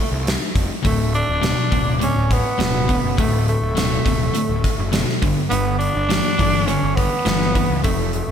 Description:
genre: classic rock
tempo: 103 BPM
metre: 4/4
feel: straight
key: unclear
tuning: A4 = 440 Hz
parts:
  - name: growling tenor saxophone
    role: melody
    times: 0.0-8.3 s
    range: A3 to D4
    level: -23 LUFS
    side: right 2 dB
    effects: slapback echo
  - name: fuzz picked electric bass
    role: bass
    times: 0.1-8.3 s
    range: D1 to C#2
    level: -24 LUFS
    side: equal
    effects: overdrive
  - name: gated 80s drum kit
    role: drums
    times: 0.3-8.3 s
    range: hi-hat, kick drum, snare drum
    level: -22 LUFS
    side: equal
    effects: none
  - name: distorted electric guitar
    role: riff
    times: 0.8-8.3 s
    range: D2 to E3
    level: -23 LUFS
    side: left 9 dB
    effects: overdrive
  - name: distorted electric guitar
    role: riff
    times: 0.9-8.3 s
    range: D2 to E3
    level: -25 LUFS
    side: right 9 dB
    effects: overdrive
room: moderate lush hall reverb, RT60 1.9 s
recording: big arena sound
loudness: -16 LUFS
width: side -8 dB against mid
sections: 0.0-8.3 A section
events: none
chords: 0.0 F; 0.8 D5; 5.2 G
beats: 0.26 | 0.84 1.43 2.01 2.59 | 3.18 3.76 4.34 4.93 | 5.51 6.09 6.68 7.26 | 7.84

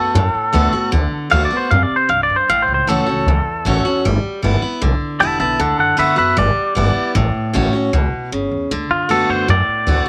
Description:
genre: rockabilly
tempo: 154 BPM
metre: 4/4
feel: straight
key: D major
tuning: A4 = 440 Hz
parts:
  - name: twangy electric guitar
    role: melody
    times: 0.0-10.1 s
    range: F4 to A5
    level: -19 LUFS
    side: equal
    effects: tape echo
  - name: picked steel-string acoustic guitar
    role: accompaniment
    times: 0.0-10.1 s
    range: E2 to F#4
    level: -22 LUFS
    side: equal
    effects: none
  - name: upright bass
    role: bass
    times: 0.0-10.1 s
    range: E1 to F#2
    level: -21 LUFS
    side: equal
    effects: none
room: little or no reverb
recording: none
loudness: -17 LUFS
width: mono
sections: 0.0-8.7 A section; 8.7-10.1 B section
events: clean electric guitar solo 0.0-8.7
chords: 0.0 D6; 2.5 A6; 4.0 G6; 5.6 D6; 6.4 G6; 7.2 A6; 8.7 D6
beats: 0.16 0.55 | 0.93 1.32 1.71 2.10 | 2.49 2.88 3.27 3.66 | 4.04 4.43 4.82 5.21 | 5.60 5.99 6.38 6.76 | 7.15 7.54 7.93 8.32 | 8.71 9.09 9.48 9.87

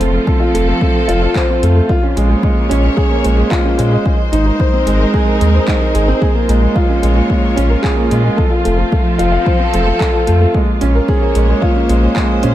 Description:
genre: piano and strings electronica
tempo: 111 BPM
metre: 4/4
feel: straight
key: Bb minor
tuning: A4 = 440 Hz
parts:
  - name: clear symphonic string section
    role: sustained chords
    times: 0.0-12.5 s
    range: F3 to Db5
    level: -20 LUFS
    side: right 1 dB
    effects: none
  - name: warm concert grand piano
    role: riff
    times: 0.0-12.5 s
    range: Ab3 to F5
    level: -15 LUFS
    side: equal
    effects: digital delay
  - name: warm sub bass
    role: bass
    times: 0.0-12.5 s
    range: F1 to Bb2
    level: -13 LUFS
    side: equal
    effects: sidechain pumping
  - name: deep house drum kit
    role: drums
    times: 0.0-12.5 s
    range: handclaps, hi-hat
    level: -26 LUFS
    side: equal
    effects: overdrive
  - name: electronic kick drum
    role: drums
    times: 0.3-12.3 s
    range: none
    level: -16 LUFS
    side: equal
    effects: overdrive
room: light reverb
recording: none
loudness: -11 LUFS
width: side -13 dB against mid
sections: 0.0-12.5 A section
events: none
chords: 0.0 F; 1.9 Bbm7; 4.1 Ab; 6.2 Bbm7; 8.4 F; 10.5 Bbm7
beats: 0.28 0.81 1.36 | 1.90 2.44 2.98 3.52 | 4.06 4.60 5.14 5.68 | 6.22 6.76 7.30 7.84 | 8.38 8.92 9.46 10.01 | 10.54 11.09 11.63 12.17

